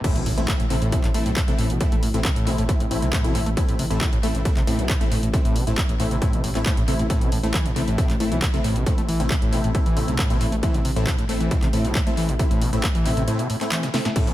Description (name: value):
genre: driving peak-time techno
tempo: 136 BPM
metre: 4/4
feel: straight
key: A minor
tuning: A4 = 440 Hz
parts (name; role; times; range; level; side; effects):
- screaming distorted acid line; riff; 0.0-14.3 s; A2 to A3; -26 LUFS; equal; distortion, chorus, sidechain pumping, dub echo
- supersaw stab; stabs; 0.0-14.3 s; A3 to E4; -28 LUFS; left 1 dB; sidechain pumping, dub echo
- electronic kick drum; drums; 0.0-14.2 s; none; -22 LUFS; equal; overdrive
- techno drum kit; drums; 0.0-14.3 s; crash cymbal, handclaps, hi-hat, snare drum; -29 LUFS; equal; overdrive, analog delay
- impact; sound effects; 0.0-1.8 s; none; -33 LUFS; equal; none
- dark detuned saw bass; bass; 0.2-14.3 s; A1 to B1; -26 LUFS; equal; sidechain pumping
room: light reverb, digital ambience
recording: echo-heavy mix, high-pass filter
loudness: -19 LUFS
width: side -14 dB against mid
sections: 0.0-14.3 A section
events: drop 0.0-14.3; impact 0.0-1.8; break 13.3-14.2; drum fill 13.8-14.2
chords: 0.0 Am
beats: | 0.04 0.48 0.92 1.36 | 1.80 2.25 2.69 3.13 | 3.57 4.01 4.45 4.89 | 5.33 5.78 6.22 6.66 | 7.10 7.54 7.98 8.42 | 8.86 9.30 9.75 10.19 | 10.63 11.07 11.51 11.95 | 12.39 12.84 13.28 13.72 | 14.16